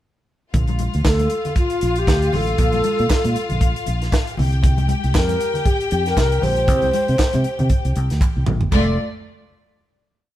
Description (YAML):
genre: disco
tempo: 117 BPM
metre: 4/4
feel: swing 56% on 16ths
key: unclear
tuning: A4 = 441 Hz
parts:
  - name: warm studio string section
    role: second line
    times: 0.5-9.0 s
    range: A3 to G5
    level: -26 LUFS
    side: left 3 dB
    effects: none
  - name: fingered electric bass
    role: bass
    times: 0.5-9.0 s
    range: F1 to C3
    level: -20 LUFS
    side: equal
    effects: none
  - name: tight funk drum kit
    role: drums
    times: 0.5-8.9 s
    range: crash cymbal, hi-hat, kick drum, snare drum, toms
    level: -20 LUFS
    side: equal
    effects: none
  - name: congas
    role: percussion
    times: 0.5-9.0 s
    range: none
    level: -28 LUFS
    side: left 2 dB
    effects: none
  - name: wooden-headed alto flute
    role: melody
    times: 1.1-9.0 s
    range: F4 to C5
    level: -22 LUFS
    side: equal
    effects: none
  - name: group handclap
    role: percussion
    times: 1.1-9.0 s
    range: none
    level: -34 LUFS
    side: right 3 dB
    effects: none
room: light reverb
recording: band playing live in one room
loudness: -16 LUFS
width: side -13 dB against mid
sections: 0.5-8.7 pre-chorus; 8.7-10.4 final chord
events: drum fill 8.2-8.7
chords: 0.5 Bbmaj7; 4.4 C7(no3); 8.7 F